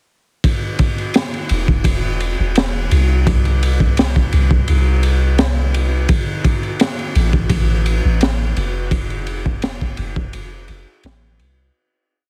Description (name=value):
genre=trip hop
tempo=85 BPM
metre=4/4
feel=swing 53% on 16ths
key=unclear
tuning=A4 = 440 Hz
part: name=crunchy breakbeat drum kit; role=drums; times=0.4-11.6 s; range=kick drum, ride cymbal, snare drum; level=-20 LUFS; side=equal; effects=none
part: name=soft 808-style bass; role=bass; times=1.5-11.7 s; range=E1 to C2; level=-19 LUFS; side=equal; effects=none
room=little or no reverb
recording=heavily compressed radio sound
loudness=-17 LUFS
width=mono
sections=0.4-11.7 groove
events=fade-out 8.0-11.7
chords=none